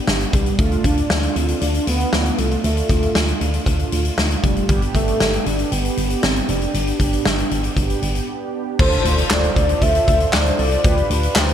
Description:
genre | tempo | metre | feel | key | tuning
synth-pop | 117 BPM | 4/4 | straight | D dorian | A4 = 442 Hz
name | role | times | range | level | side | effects
warm velvety synth lead | melody | 0.0-11.5 s | G3 to E5 | -23 LUFS | equal | chorus, ping-pong delay
mellow synth brass | accompaniment | 0.0-11.5 s | A3 to C5 | -25 LUFS | right 2 dB | chorus
solid FM bass | bass | 0.1-11.5 s | F1 to D2 | -21 LUFS | equal | none
huge arena drum kit | drums | 0.1-11.5 s | crash cymbal, handclaps, hi-hat, kick drum, snare drum | -20 LUFS | equal | none
impact | sound effects | 8.8-10.8 s | none | -28 LUFS | equal | none
room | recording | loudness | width
moderate plate reverb, RT60 1.9 s | bright 1980s-style digital production | -16 LUFS | side -9 dB against mid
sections
0.0-8.8 A section; 8.8-11.5 B section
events
break 8.3-8.8; impact 8.8-10.8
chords
0.0 G; 0.6 Dm; 4.7 G; 8.8 Dm7; 10.8 G7/D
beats
0.08 | 0.59 1.10 1.61 2.13 | 2.64 3.15 3.67 4.18 | 4.69 5.20 5.72 6.23 | 6.74 7.25 7.77 8.28 | 8.79 9.31 9.82 10.33 | 10.85 11.36

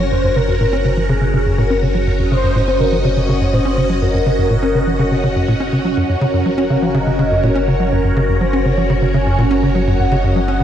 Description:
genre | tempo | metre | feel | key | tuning
ambient, sequencer-driven space music | 123 BPM | 4/4 | straight | Gb lydian | A4 = 440 Hz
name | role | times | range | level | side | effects
mellow horn-like synth lead | melody | 0.0-10.6 s | Ab4 to Ab5 | -21 LUFS | left 1 dB | ensemble chorus, vintage 12-bit sampler grit, ping-pong delay
phased string machine | sustained chords | 0.0-10.6 s | Db4 to Eb5 | -19 LUFS | equal | ensemble chorus, phaser
tight sequencer bass | riff | 0.0-10.6 s | Gb2 to Db4 | -17 LUFS | equal | wide subtle chorus, ping-pong delay
warm sub bass | bass | 0.0-10.6 s | Gb1 | -20 LUFS | equal | none
room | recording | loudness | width
moderate lush hall reverb, RT60 2.9 s | dark, warm production | -13 LUFS | side -10 dB against mid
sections
0.0-10.6 A section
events
filter sweep on analog synth bass 0.0-10.6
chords
0.0 Gb6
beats
| 0.12 0.60 1.09 1.58 | 2.07 2.55 3.04 3.53 | 4.02 4.51 4.99 5.48 | 5.97 6.46 6.95 7.43 | 7.92 8.41 8.90 9.38 | 9.87 10.36

